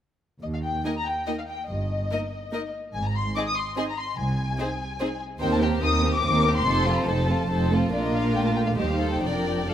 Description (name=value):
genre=quick classical-period movement for symphony orchestra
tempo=144 BPM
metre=3/4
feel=rubato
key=Eb major, Bb major from 5.4 s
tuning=A4 = 440 Hz
part: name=dark studio violin section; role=melody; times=0.4-9.7 s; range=D5 to Eb6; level=-29 LUFS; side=left 3 dB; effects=none
part: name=dark chamber cello section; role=bass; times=0.4-9.7 s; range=C2 to Bb2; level=-29 LUFS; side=right 1 dB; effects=none
part: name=dark chamber double bass section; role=bass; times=0.4-9.7 s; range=F1 to Eb2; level=-30 LUFS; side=right 2 dB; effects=none
part: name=warm chamber viola section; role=accompaniment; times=0.8-9.7 s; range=F3 to Eb4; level=-29 LUFS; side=right 2 dB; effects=none
part: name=warm chamber violin section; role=second line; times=0.9-9.7 s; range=F4 to Eb5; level=-30 LUFS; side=left 2 dB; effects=none
room=moderate scoring stage reverb, RT60 1.6 s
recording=none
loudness=-23 LUFS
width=side -10 dB against mid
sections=0.4-9.7 A section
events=none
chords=0.4 Eb5; 1.7 Eb/G; 2.9 Ab; 4.2 Ab/C; 5.4 Cm7/Eb; 6.7 F7; 7.9 Bb; 8.8 Cm/Eb; 9.2 Bb/F